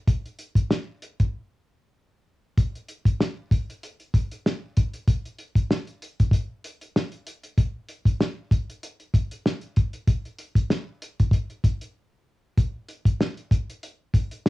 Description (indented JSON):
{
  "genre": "hip hop",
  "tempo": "96 BPM",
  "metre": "4/4",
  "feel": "swing 55% on 16ths",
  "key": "none",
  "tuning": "none",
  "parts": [
    { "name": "cloth-damped thuddy drum kit", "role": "drums", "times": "0.1-14.5 s", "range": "hi-hat, kick drum, snare drum", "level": "-21 LUFS", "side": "equal", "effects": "none" }
  ],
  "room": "light reverb",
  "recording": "home recording on cassette",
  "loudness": "-23 LUFS",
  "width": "side -19 dB against mid",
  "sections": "0.0-2.6 A section; 2.6-14.5 B section",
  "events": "break 1.3-2.6, 12.0-12.6",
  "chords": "none",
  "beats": "| 0.08 0.70 1.33 1.95 | 2.58 3.20 3.83 4.45 | 5.08 5.70 6.33 6.95 | 7.58 8.20 8.83 9.45 | 10.08 10.70 11.33 11.95 | 12.58 13.20 13.83 14.45"
}